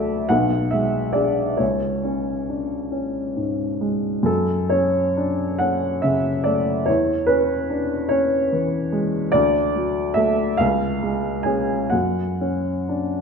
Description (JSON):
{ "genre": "classical, romantic nocturne for solo piano", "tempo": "42-50 BPM (dotted quarters)", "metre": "12/8", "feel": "rubato", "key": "unclear", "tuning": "A4 = 435 Hz", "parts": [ { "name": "warm upright piano", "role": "solo", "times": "0.0-13.2 s", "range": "B1 to G#5", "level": "-19 LUFS", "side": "equal", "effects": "none" } ], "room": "wet recital hall reverb, RT60 1.6 s", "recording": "none", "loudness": "-19 LUFS", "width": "side -5 dB against mid", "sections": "0.0-13.2 A section", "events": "none", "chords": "0.3 G#dim/B; 1.6 C#5; 4.3 F#m; 6.9 C#m/E; 9.4 D; 10.6 C#; 11.9 F#5", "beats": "0.30 1.60 2.92 | 4.28 5.60 6.88 8.13 | 9.36 10.61 11.93" }